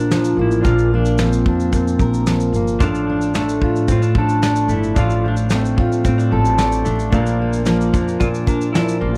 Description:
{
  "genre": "acoustic pop",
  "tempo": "111 BPM",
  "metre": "4/4",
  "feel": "straight",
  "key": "unclear",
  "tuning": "A4 = 438 Hz",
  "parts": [
    { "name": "clean lap steel guitar", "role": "melody", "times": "0.0-9.2 s", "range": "Bb3 to F4", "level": "-24 LUFS", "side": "equal", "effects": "none" },
    { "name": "bright concert grand piano", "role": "accompaniment", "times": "0.0-9.2 s", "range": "D4 to F5", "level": "-34 LUFS", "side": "equal", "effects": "none" },
    { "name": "fingerpicked steel-string acoustic guitar", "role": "accompaniment", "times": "0.0-9.2 s", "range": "A2 to Bb4", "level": "-22 LUFS", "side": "equal", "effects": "none" },
    { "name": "upright bass", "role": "bass", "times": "0.0-9.2 s", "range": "G1 to A2", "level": "-23 LUFS", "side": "equal", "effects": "none" },
    { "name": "soft brush drum kit", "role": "drums", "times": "0.1-9.2 s", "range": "kick drum, shaker, snare drum", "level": "-24 LUFS", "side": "equal", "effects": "none" },
    { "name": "direct-recorded clean electric guitar", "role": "arpeggios", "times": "2.8-9.2 s", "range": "F3 to D4", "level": "-29 LUFS", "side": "equal", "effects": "none" }
  ],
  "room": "light reverb",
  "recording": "dark, warm production, vinyl crackle",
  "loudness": "-17 LUFS",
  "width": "mono",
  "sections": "0.0-9.2 A section",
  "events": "none",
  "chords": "0.0 Bb; 2.8 Dm; 7.1 Bb"
}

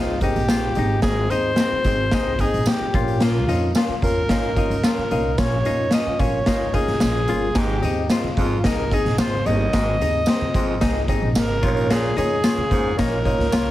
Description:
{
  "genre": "uptempo 1960s-style soul",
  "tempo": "110 BPM",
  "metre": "4/4",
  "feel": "straight",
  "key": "Bb dorian",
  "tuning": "A4 = 440 Hz",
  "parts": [
    { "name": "breathy alto saxophone", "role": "melody", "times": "0.0-13.7 s", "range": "F4 to Eb5", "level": "-24 LUFS", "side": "equal", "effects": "none" },
    { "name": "barky tine electric piano", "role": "accompaniment", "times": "0.0-13.7 s", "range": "Ab2 to F5", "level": "-27 LUFS", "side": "left 2 dB", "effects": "wide subtle chorus" },
    { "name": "archtop guitar, miked and amplified", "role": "riff", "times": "0.0-13.7 s", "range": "Bb3 to Ab4", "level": "-30 LUFS", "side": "left 4 dB", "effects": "none" },
    { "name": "upright bass", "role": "bass", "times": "0.0-13.7 s", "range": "G1 to F2", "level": "-25 LUFS", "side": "right 1 dB", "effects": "none" },
    { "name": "raw garage drum kit", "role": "drums", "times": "0.2-13.7 s", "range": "hi-hat, kick drum, snare drum", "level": "-22 LUFS", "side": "equal", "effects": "none" },
    { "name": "tambourine", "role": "percussion", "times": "0.5-13.7 s", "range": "none", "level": "-37 LUFS", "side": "right 5 dB", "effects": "none" },
    { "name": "raspy baritone saxophone", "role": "riff", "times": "7.6-12.9 s", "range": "Eb2 to Bb2", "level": "-29 LUFS", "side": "right 3 dB", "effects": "none" },
    { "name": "congas", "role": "percussion", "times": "7.6-13.7 s", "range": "none", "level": "-34 LUFS", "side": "right 2 dB", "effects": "none" }
  ],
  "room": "light reverb",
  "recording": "heavily compressed radio sound, multiband compression",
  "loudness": "-18 LUFS",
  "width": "side -14 dB against mid",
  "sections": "0.0-13.7 A section",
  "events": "none",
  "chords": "0.0 Ab; 2.9 Bbm; 7.6 Ab; 11.6 Bbm"
}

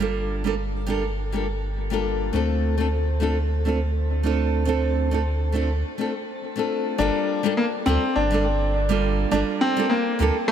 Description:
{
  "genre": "sunset chillout",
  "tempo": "103 BPM",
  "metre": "4/4",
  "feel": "swing 56% on 16ths",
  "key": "G minor",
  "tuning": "A4 = 443 Hz",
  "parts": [
    { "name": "nylon-string guitar", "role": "accompaniment", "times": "0.0-10.4 s", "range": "G3 to A4", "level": "-24 LUFS", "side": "moving between left 7 dB and right 6 dB", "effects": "auto-pan, shimmer reverb, analog delay" },
    { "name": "warm sub bass", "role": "bass", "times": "0.0-10.3 s", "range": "G1 to D2", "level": "-24 LUFS", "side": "equal", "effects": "none" },
    { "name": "bright grand piano", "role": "melody", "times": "7.0-10.5 s", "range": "A3 to D4", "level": "-22 LUFS", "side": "left 1 dB", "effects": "shimmer reverb, analog delay" }
  ],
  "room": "moderate plate reverb, RT60 3.4 s",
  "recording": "echo-heavy mix",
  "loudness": "-21 LUFS",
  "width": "side -9 dB against mid",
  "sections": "0.0-7.0 A section; 7.0-10.5 B section",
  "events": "break 5.8-7.0",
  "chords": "0.0 Gm9; 2.3 Dm7; 7.0 Gm9"
}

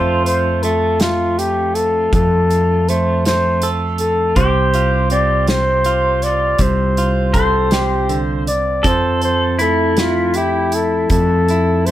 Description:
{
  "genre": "acoustic folk-pop ballad",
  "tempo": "53 BPM (dotted quarters)",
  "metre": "6/8",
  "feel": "straight",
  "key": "F major",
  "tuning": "A4 = 439 Hz",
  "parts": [
    { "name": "breathy flugelhorn", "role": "melody", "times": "0.0-11.9 s", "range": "F4 to D5", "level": "-17 LUFS", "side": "left 1 dB", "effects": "none" },
    { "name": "pedal steel guitar", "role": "second line", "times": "0.0-11.9 s", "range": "E4 to C5", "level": "-23 LUFS", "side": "equal", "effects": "none" },
    { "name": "direct-recorded clean electric guitar", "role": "accompaniment", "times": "0.0-11.9 s", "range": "F2 to A4", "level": "-22 LUFS", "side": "right 3 dB", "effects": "none" },
    { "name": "fretless electric bass", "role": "bass", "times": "0.0-11.9 s", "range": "C2 to F2", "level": "-19 LUFS", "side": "equal", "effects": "none" },
    { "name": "loose indie drum kit", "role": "drums", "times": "0.3-11.9 s", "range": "hi-hat, kick drum, snare drum", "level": "-20 LUFS", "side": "equal", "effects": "none" }
  ],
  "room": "light reverb",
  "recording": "faint mains hum",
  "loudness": "-13 LUFS",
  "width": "side -13 dB against mid",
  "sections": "0.0-11.9 A section",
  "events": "none",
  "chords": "0.0 F; 4.4 Csus4; 8.9 Fmaj7"
}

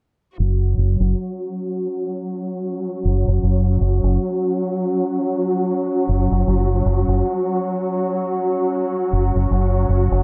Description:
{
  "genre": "trip hop",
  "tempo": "79 BPM",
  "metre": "4/4",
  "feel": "swing 59% on 16ths",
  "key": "unclear",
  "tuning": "A4 = 440 Hz",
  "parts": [
    { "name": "rich studio string section", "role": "sustained chords", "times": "0.4-10.2 s", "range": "F#3 to F#4", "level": "-24 LUFS", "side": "equal", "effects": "vintage 12-bit sampler grit" },
    { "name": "deep dub fingered electric bass", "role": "bass", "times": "0.4-10.2 s", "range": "F#1", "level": "-19 LUFS", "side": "equal", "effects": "none" },
    { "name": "bowed-like drone", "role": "texture", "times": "1.5-10.2 s", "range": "C#4", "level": "-30 LUFS", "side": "equal", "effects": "built-in reverb" }
  ],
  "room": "moderate lush hall reverb, RT60 2.6 s",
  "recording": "dreamy mix soaked in reverb, low-pass filter",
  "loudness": "-20 LUFS",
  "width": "mono",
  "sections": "0.4-10.2 A section",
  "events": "filter sweep 0.4-10.2",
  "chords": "0.4 F#5"
}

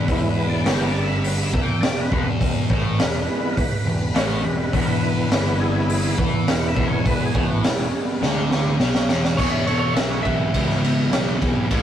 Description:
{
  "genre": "blues rock power trio and southern rock",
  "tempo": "103 BPM",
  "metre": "4/4",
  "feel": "straight",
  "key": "unclear",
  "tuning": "A4 = 438 Hz",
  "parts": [
    { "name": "overdriven tonewheel organ", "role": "sustained chords", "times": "0.0-11.8 s", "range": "E3 to G5", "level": "-26 LUFS", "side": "right 1 dB", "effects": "chorus vibrato, slow rotary speaker" },
    { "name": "sludgy distorted guitar", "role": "riff", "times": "0.0-11.8 s", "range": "E2 to E3", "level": "-25 LUFS", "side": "left 1 dB", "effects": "overdrive" },
    { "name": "growling picked electric bass", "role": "bass", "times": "0.0-11.8 s", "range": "E1 to E2", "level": "-25 LUFS", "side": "equal", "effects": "overdrive" },
    { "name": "raw garage drum kit", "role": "drums", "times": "0.1-11.8 s", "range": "crash cymbal, hi-hat, kick drum, ride cymbal, snare drum", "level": "-22 LUFS", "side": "right 1 dB", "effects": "none" },
    { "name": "lightly driven lead guitar", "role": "melody", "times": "9.4-11.8 s", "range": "C#5 to E5", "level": "-26 LUFS", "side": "right 3 dB", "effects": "none" },
    { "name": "lightly driven lead guitar", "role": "second line", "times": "9.4-11.8 s", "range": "G#4 to C#5", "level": "-36 LUFS", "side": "right 2 dB", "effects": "none" }
  ],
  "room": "moderate booth ambience, RT60 0.2 s",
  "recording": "rough rehearsal-room recording, warm saturation, vinyl crackle",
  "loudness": "-18 LUFS",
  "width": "side -10 dB against mid",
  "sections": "0.0-9.4 A section; 9.4-11.8 B section",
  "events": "tonewheel organ solo 0.0-9.4; drum fill 8.2-9.4",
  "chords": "0.0 E"
}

